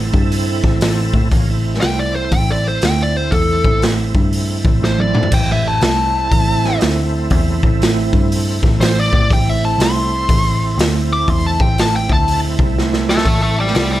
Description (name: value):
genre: blues rock power trio and southern rock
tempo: 120 BPM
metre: 4/4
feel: swing 64% on 8ths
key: A minor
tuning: A4 = 440 Hz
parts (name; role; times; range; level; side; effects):
- overdriven tonewheel organ; sustained chords; 0.0-14.0 s; A3 to A4; -23 LUFS; right 5 dB; slow rotary speaker, chorus vibrato
- vintage muted picked electric bass; bass; 0.0-14.0 s; A1 to A2; -18 LUFS; equal; none
- raw garage drum kit; drums; 0.1-13.9 s; crash cymbal, hi-hat, kick drum, snare drum, toms; -17 LUFS; equal; none
- fuzz lead guitar; melody; 1.8-14.0 s; A4 to D6; -19 LUFS; left 1 dB; distortion
room: light reverb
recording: none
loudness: -13 LUFS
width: side -14 dB against mid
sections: 0.0-14.0 A section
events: lead electric guitar solo 0.0-14.0; drum fill 4.8-5.3, 12.8-13.3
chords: 0.0 Am